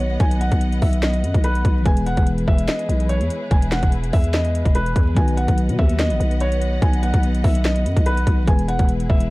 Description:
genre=hip hop, trap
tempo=145 BPM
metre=4/4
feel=half-time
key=B major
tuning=A4 = 440 Hz
part: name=felt-muted upright piano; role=melody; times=0.0-9.3 s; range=B4 to G#5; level=-26 LUFS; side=equal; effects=tape echo
part: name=mellow tine electric piano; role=accompaniment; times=0.0-9.3 s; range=D#3 to B4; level=-27 LUFS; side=left 2 dB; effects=medium stereo tremolo
part: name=rich studio string section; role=sustained chords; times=0.0-9.3 s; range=E3 to F#5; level=-31 LUFS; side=equal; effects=none
part: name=growling 808-style bass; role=bass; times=0.0-9.3 s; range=E1 to B2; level=-20 LUFS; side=equal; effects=none
part: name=trap drum kit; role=drums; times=0.2-9.3 s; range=finger snaps, hi-hat, kick drum, snare drum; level=-19 LUFS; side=equal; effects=none
room=digital ambience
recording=dark, warm production, vinyl crackle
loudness=-16 LUFS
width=side -21 dB against mid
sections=0.0-9.3 A section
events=none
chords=0.0 B; 1.9 E; 5.2 B; 8.5 E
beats=| 0.20 0.61 1.03 1.44 | 1.85 2.27 2.68 3.10 | 3.51 3.92 4.34 4.75 | 5.17 5.58 5.99 6.41 | 6.82 7.24 7.65 8.06 | 8.48 8.89

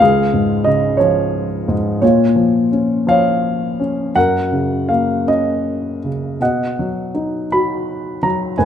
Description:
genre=classical, lyrical solo piano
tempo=52-60 BPM (dotted quarters)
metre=6/8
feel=rubato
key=unclear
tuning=A4 = 440 Hz
part: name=warm grand piano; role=solo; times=0.0-8.7 s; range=C#2 to B5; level=-14 LUFS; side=equal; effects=none
room=moderate recital hall reverb, RT60 1.6 s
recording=minimal, uncompressed stereo recording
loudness=-14 LUFS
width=side -9 dB against mid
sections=0.0-8.7 A section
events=none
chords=0.0 C#; 2.0 A#m; 4.2 F#; 6.4 B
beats=| 0.00 1.01 | 2.02 3.08 | 4.15 5.27 | 6.40 7.50 | 8.56

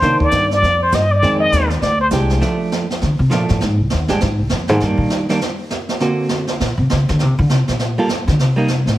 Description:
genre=jazz, small-group swing and bop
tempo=201 BPM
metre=4/4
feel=swing 62% on 8ths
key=Bb major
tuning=A4 = 440 Hz
part: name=trumpet with plunger mute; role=melody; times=0.0-2.1 s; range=C5 to Eb5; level=-15 LUFS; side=left 1 dB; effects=none
part: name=archtop guitar, miked and amplified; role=accompaniment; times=0.0-8.7 s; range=D3 to A4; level=-19 LUFS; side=right 2 dB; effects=none
part: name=upright bass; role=bass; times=0.0-9.0 s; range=C2 to D3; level=-16 LUFS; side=equal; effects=none
part: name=jazz brush drum kit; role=drums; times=0.0-9.0 s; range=brushed snare drum, hi-hat, kick drum, snare drum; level=-22 LUFS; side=right 2 dB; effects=none
room=moderate large studio reverb, RT60 0.9 s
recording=heavily compressed radio sound, multiband compression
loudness=-14 LUFS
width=side -15 dB against mid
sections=0.0-2.4 A section; 2.4-9.0 A section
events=muted trumpet solo 0.0-2.4; upright bass solo 2.4-9.0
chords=0.0 Cm9; 1.2 Fm7; 1.8 Abmaj7#11; 2.4 Bbmaj7; 3.6 Cmadd9; 4.2 Bb13; 4.8 Ebmaj7; 6.0 Daug7; 7.2 Gm (rootless); 8.4 Cm7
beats=| 0.02 0.32 0.62 0.92 | 1.22 1.52 1.81 2.11 | 2.41 2.71 3.01 3.31 | 3.61 3.90 4.20 4.50 | 4.80 5.10 5.40 5.70 | 6.00 6.29 6.59 6.89 | 7.19 7.49 7.79 8.09 | 8.39 8.69

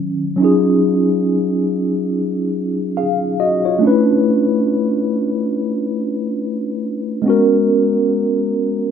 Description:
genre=R&B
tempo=70 BPM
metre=4/4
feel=swing 59% on 16ths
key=unclear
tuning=A4 = 439 Hz
part: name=mellow tine electric piano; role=solo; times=0.0-8.9 s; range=Eb3 to F5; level=-15 LUFS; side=equal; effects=medium stereo tremolo
room=moderate studio ambience, RT60 0.5 s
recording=band playing live in one room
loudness=-15 LUFS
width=side -8 dB against mid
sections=0.4-8.9 A section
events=none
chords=0.4 Ebm11; 3.8 Bm11; 7.3 Abm11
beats=| 0.40 1.25 2.11 2.97 | 3.82 4.68 5.54 6.39 | 7.25 8.11

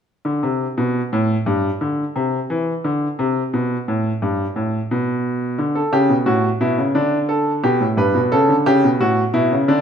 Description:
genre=classical, baroque-style 3-part fugue for grand piano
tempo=88 BPM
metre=4/4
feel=straight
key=unclear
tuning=A4 = 440 Hz
part: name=bright grand piano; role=solo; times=0.2-9.8 s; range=G2 to B4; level=-16 LUFS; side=equal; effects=none
room=wet recital hall reverb, RT60 1.3 s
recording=none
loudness=-16 LUFS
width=side -7 dB against mid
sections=0.1-9.8 A section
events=none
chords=0.1 N.C.; 5.6 D; 7.0 Gadd9; 8.3 A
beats=| 0.08 0.78 1.47 2.16 | 2.85 3.54 4.22 4.91 | 5.59 6.28 6.96 7.65 | 8.33 9.01 9.69

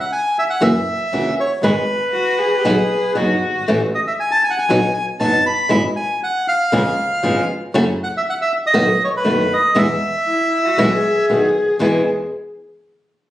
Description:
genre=tango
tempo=118 BPM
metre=4/4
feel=rubato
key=E major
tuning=A4 = 440 Hz
part: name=bandoneon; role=melody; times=0.0-11.3 s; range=B4 to B5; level=-17 LUFS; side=equal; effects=none
part: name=flamenco guitar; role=accompaniment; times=0.6-12.0 s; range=E2 to G#4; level=-19 LUFS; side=equal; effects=none
part: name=clear double bass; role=bass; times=0.6-12.0 s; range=F#1 to E2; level=-23 LUFS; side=right 1 dB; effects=none
part: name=warm cello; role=second line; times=2.1-3.8, 10.3-12.0 s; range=E4 to G#4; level=-19 LUFS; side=left 2 dB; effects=none
room=moderate large studio reverb, RT60 0.8 s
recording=recorded on a phone in the room, studio reverb, compression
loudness=-15 LUFS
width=side -14 dB against mid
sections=0.0-11.8 A section; 11.8-13.3 B section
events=none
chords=0.0 N.C.; 0.6 F#7; 1.6 G#m; 2.7 B; 3.7 A5; 4.7 B; 5.7 E/G#; 6.7 C#7; 7.7 F#5; 8.8 B7; 9.8 E; 11.3 B7; 11.8 E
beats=0.11 0.62 1.13 | 1.64 2.14 2.65 3.17 | 3.68 4.19 4.70 5.21 | 5.72 6.23 6.73 7.24 | 7.74 8.25 8.75 9.26 | 9.76 10.27 10.78 11.29 | 11.80

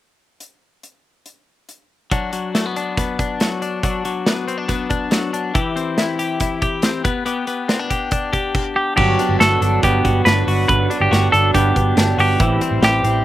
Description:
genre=jangly indie pop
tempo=140 BPM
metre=4/4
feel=straight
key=G major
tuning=A4 = 439 Hz
part: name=big rock drum kit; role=drums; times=0.4-13.1 s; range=crash cymbal, hi-hat, kick drum, snare drum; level=-21 LUFS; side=equal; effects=none
part: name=twelve-string electric guitar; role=arpeggios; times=2.1-13.2 s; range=E3 to G4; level=-21 LUFS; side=left 4 dB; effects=slapback echo
part: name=semi-hollow electric guitar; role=melody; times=8.8-13.2 s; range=G4 to B4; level=-17 LUFS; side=equal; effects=none
part: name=electric guitar through a small old amp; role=accompaniment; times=9.0-13.2 s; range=G2 to E4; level=-23 LUFS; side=right 9 dB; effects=slapback echo
part: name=vintage muted fingered electric bass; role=bass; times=9.0-13.2 s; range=G1 to A1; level=-18 LUFS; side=right 1 dB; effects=none
room=little or no reverb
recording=recorded outdoors, with no room sound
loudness=-16 LUFS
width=side -14 dB against mid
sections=0.4-2.1 A section; 2.1-9.0 B section; 9.0-13.2 C section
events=none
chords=0.4 N.C.; 2.1 Bm/F#; 5.5 C/E; 7.0 G/B; 9.0 Gmaj7; 12.4 Am7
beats=| 0.40 0.83 1.26 1.69 | 2.12 2.55 2.98 3.40 | 3.83 4.26 4.69 5.12 | 5.55 5.98 6.41 6.83 | 7.26 7.69 8.12 8.55 | 8.98 9.40 9.83 10.26 | 10.69 11.12 11.55 11.97 | 12.40 12.83

